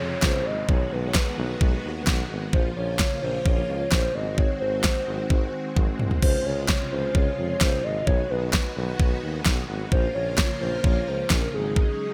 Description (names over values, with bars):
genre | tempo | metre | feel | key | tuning
synth-pop | 130 BPM | 4/4 | straight | Db major | A4 = 440 Hz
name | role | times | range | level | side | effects
hollow clarinet-like synth lead | melody | 0.0-12.1 s | Ab4 to Eb5 | -31 LUFS | equal | chorus, delay
string machine, violins | sustained chords | 0.0-12.1 s | C3 to Gb4 | -35 LUFS | equal | ensemble chorus
mellow tuba | bass | 0.0-11.9 s | Ab1 to F2 | -32 LUFS | equal | none
downlifter | sound effects | 0.0-2.5 s | none | -42 LUFS | equal | none
pop drum kit | drums | 0.2-11.9 s | crash cymbal, kick drum, snare drum, toms | -25 LUFS | equal | gated reverb
room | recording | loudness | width
light reverb, digital ambience | bright 1980s-style digital production | -24 LUFS | mono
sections
0.0-12.1 A section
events
drum fill 5.8-6.2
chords
0.0 Dbmaj7; 0.7 Cb6; 2.5 Bbm; 4.1 Ab7; 6.2 Dbmaj7; 8.1 Cb6; 9.9 Bbm; 11.5 Ab7sus4